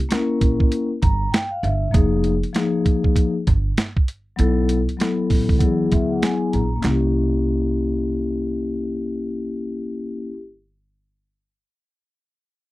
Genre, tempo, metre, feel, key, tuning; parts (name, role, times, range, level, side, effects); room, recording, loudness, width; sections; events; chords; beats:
hip hop, jazz-hop; 98 BPM; 4/4; swing 62% on 16ths; A4 = 441 Hz
boom bap sampler-style drum kit; drums; 0.0-7.0 s; handclaps, hi-hat, kick drum, snare drum; -19 LUFS; right 1 dB
vibraphone with soft mallets; accompaniment; 0.1-10.4 s; F3 to Bb5; -21 LUFS; left 3 dB; low-pass filter
upright bass; bass; 0.4-10.3 s; F1 to E2; -22 LUFS; right 1 dB
little or no reverb; dry, close 1970s-style studio recording, faint mains hum; -18 LUFS; side -17 dB against mid
0.0-6.8 A section; 6.8-9.3 B section
filter sweep on vibraphone 0.0-6.8; vibraphone fill 0.7-1.9, 5.6-6.8
0.0 C7b9 (rootless); 1.9 Fm7; 4.4 B7sus4; 5.6 E9; 6.8 C7b9
0.10 0.71 1.32 | 1.94 2.55 3.16 3.77 | 4.38 5.00 5.61 6.22 | 6.83 7.45 8.06 8.67